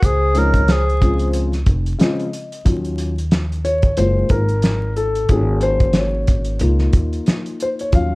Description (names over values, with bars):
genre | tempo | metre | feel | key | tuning
hip hop, jazz-hop | 91 BPM | 4/4 | swing 57% on 16ths | unclear | A4 = 440 Hz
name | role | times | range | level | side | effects
breathy tenor saxophone | melody | 0.0-1.4 s | Ab4 to Bb4 | -20 LUFS | equal | slapback echo
vibraphone with soft mallets | second line | 0.0-1.3 s | C5 to Db5 | -26 LUFS | equal | slapback echo
upright bass | bass | 0.0-8.2 s | F1 to Eb2 | -19 LUFS | equal | none
cloth-damped thuddy drum kit | drums | 0.0-8.1 s | hi-hat, kick drum, snare drum | -17 LUFS | equal | none
dark concert grand piano | accompaniment | 0.3-8.2 s | Db3 to F5 | -20 LUFS | left 2 dB | none
room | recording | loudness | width
light reverb | dark, warm production, vinyl crackle | -15 LUFS | side -22 dB against mid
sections
0.0-2.7 A section; 2.7-8.2 B section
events
grand piano fill 1.7-2.7; grand piano solo 2.7-8.2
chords
0.0 Dbmaj7; 2.7 Ebm7; 4.0 Gbmaj9; 5.3 Ab7sus4; 6.6 Db69